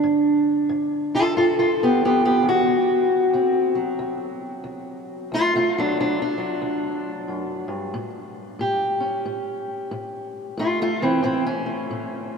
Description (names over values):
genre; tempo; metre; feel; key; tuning
acoustic country blues, solo or duo; 91 BPM; 4/4; swing 63% on 8ths; unclear; A4 = 441 Hz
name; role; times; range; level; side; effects
fingerpicked steel-string acoustic guitar; solo; 0.0-12.4 s; D2 to A4; -20 LUFS; equal; none
room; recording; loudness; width
wet cathedral reverb, RT60 6.0 s; in a vast, echoing space; -20 LUFS; side -5 dB against mid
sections
0.0-12.4 A section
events
none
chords
0.0 G7; 2.7 D7; 7.9 A7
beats
| 0.04 0.70 1.36 2.02 | 2.67 3.33 3.99 4.65 | 5.31 5.97 6.62 7.28 | 7.94 8.60 9.26 9.92 | 10.58 11.23 11.89